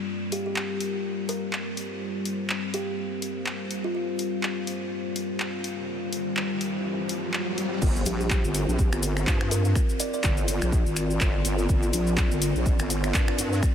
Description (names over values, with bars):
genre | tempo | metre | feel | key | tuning
bass house | 124 BPM | 4/4 | swing 57% on 16ths | G minor | A4 = 440 Hz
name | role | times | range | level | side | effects
deep dark ambient pad | sustained chords | 0.0-13.7 s | G3 to F5 | -33 LUFS | left 3 dB | chorus, built-in reverb, sidechain pumping
warbly tape-like pad | texture | 0.0-13.7 s | G3 to D5 | -33 LUFS | left 1 dB | chorus, built-in reverb, sidechain pumping
kalimba | melody | 0.3-4.0, 8.1-10.2 s | F4 to D5 | -35 LUFS | right 2 dB | ping-pong delay
house drum kit | drums | 0.3-13.7 s | crash cymbal, finger snaps, handclaps, hi-hat | -32 LUFS | equal | none
riser | sound effects | 5.8-7.8 s | none | -37 LUFS | equal | none
wobble bass | bass | 7.8-13.6 s | G1 to G2 | -26 LUFS | equal | chorus, sidechain pumping
electronic kick drum | drums | 7.8-13.7 s | none | -24 LUFS | equal | none
cabasa | percussion | 7.8-13.7 s | none | -34 LUFS | left 3 dB | none
room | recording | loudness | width
moderate huge ambient reverb, RT60 7.6 s | dreamy mix soaked in reverb | -24 LUFS | side -9 dB against mid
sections
0.0-7.8 A section; 7.8-13.7 B section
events
filter sweep on ambient pad 0.0-7.8; riser 5.8-7.8; drop 7.8-13.7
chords
0.0 Gm